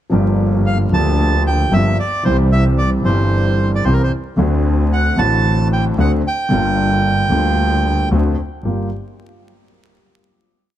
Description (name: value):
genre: tango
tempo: 113 BPM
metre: 4/4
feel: rubato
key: G dorian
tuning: A4 = 440 Hz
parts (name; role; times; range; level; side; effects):
- warm grand piano; accompaniment; 0.1-8.9 s; G1 to G4; -17 LUFS; left 1 dB; none
- clear double bass; bass; 0.1-8.9 s; G1 to D2; -17 LUFS; equal; none
- bandoneon; melody; 0.7-8.1 s; Bb4 to A5; -20 LUFS; right 3 dB; none
room: little or no reverb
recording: dark, warm production, vinyl crackle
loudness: -14 LUFS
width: side -12 dB against mid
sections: 0.1-8.7 A section; 8.7-10.8 final chord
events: none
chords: 0.1 Gm7; 2.3 C; 4.4 D7; 6.5 Gm7; 8.1 D7; 8.7 Gm7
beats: | 0.12 0.66 1.19 1.72 | 2.25 2.79 3.32 3.85 | 4.38 4.92 5.45 5.98 | 6.51 7.05 7.58 8.12 | 8.65